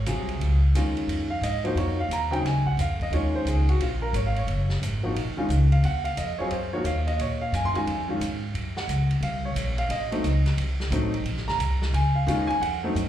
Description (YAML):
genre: jazz piano trio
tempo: 177 BPM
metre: 4/4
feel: swing 64% on 8ths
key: Bb minor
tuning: A4 = 440 Hz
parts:
  - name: warm baby grand piano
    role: melody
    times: 0.0-13.1 s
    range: C3 to C6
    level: -28 LUFS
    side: equal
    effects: slapback echo
  - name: upright bass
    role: bass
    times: 0.0-13.1 s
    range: F1 to Bb2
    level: -25 LUFS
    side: equal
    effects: none
  - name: vintage drum kit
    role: drums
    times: 0.1-13.1 s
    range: hi-hat, kick drum, ride cymbal, snare drum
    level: -36 LUFS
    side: right 2 dB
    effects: none
room: studio reverb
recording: live gig heard through the venue's PA, club reverb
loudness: -23 LUFS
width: side -11 dB against mid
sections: 0.0-13.1 A section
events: grand piano solo 0.0-13.1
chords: 0.0 Bbm7 (rootless); 3.1 Ebm9; 7.2 Bbm7; 8.5 Gb; 9.9 Adim7; 11.3 Bbm7